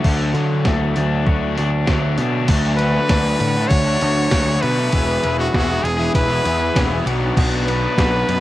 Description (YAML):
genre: indie rock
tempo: 98 BPM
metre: 4/4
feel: straight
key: unclear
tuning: A4 = 441 Hz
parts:
  - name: cranked stack guitar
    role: riff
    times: 0.0-8.4 s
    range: B2 to G#4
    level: -23 LUFS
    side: left 7 dB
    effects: overdrive, cassette tape
  - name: overdriven semi-hollow guitar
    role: riff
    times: 0.0-8.4 s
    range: B2 to F#4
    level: -26 LUFS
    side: right 7 dB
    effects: wide subtle chorus, cassette tape
  - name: fuzz picked electric bass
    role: bass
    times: 0.0-8.4 s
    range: E1 to D3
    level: -20 LUFS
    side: equal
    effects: overdrive
  - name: gated 80s digital drum machine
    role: drums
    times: 0.0-8.4 s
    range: crash cymbal, hi-hat, kick drum, ride cymbal, snare drum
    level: -21 LUFS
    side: equal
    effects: gated reverb, gated reverb snare, cassette tape
  - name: brilliant trumpet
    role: melody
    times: 2.8-8.4 s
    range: F#4 to C#5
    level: -21 LUFS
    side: equal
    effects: none
room: little or no reverb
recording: home recording on cassette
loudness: -15 LUFS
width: side -15 dB against mid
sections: 0.0-2.5 A section; 2.5-8.4 B section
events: none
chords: 0.0 D; 4.9 E; 7.1 Bm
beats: | 0.04 0.65 1.26 1.87 | 2.48 3.10 3.71 4.32 | 4.93 5.54 6.15 6.76 | 7.37 7.98